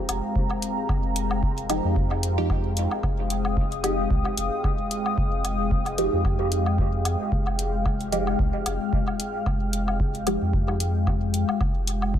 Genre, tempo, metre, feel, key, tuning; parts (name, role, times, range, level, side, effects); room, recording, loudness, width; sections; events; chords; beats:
dub techno; 112 BPM; 4/4; swing 55% on 16ths; F minor; A4 = 439 Hz
dark analog pad; sustained chords; 0.0-12.2 s; Ab3 to F6; -28 LUFS; left 2 dB; chorus, sidechain pumping
filtered dub chord stab; stabs; 0.0-12.2 s; F3 to G4; -30 LUFS; right 2 dB; phaser, sidechain pumping, dub echo
bubbling stepped-filter texture; texture; 0.0-12.2 s; Ab3 to G5; -39 LUFS; left 1 dB; chorus, built-in reverb, sidechain pumping
soft dub sub bass; bass; 0.1-12.2 s; F1 to F2; -28 LUFS; equal; sidechain pumping
electronic hi-hat; drums; 0.1-12.0 s; -30 LUFS; left 2 dB
woodblock; percussion; 0.1-12.1 s; -35 LUFS; left 1 dB; sidechain pumping on perc, dub echo
electronic kick drum; drums; 0.4-12.2 s; -26 LUFS; equal
light reverb; -22 LUFS; side -10 dB against mid
0.0-12.2 A section
0.0 Fm9
0.36 | 0.89 1.43 1.96 2.50 | 3.04 3.57 4.11 4.64 | 5.18 5.71 6.25 6.79 | 7.32 7.86 8.39 8.93 | 9.46 10.00 10.54 11.07 | 11.61 12.14